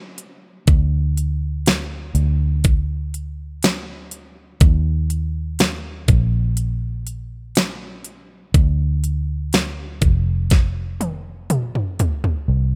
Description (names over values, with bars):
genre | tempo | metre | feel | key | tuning
pop ballad | 61 BPM | 4/4 | straight | unclear | A4 = 440 Hz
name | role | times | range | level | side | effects
vintage muted fingered electric bass | bass | 0.0-12.8 s | F1 to Eb2 | -22 LUFS | equal | none
pop drum kit | drums | 0.2-12.5 s | hi-hat, kick drum, snare drum, toms | -20 LUFS | equal | none
room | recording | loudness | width
little or no reverb | none | -20 LUFS | mono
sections
0.0-12.5 A section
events
drum fill 10.5-12.5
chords
none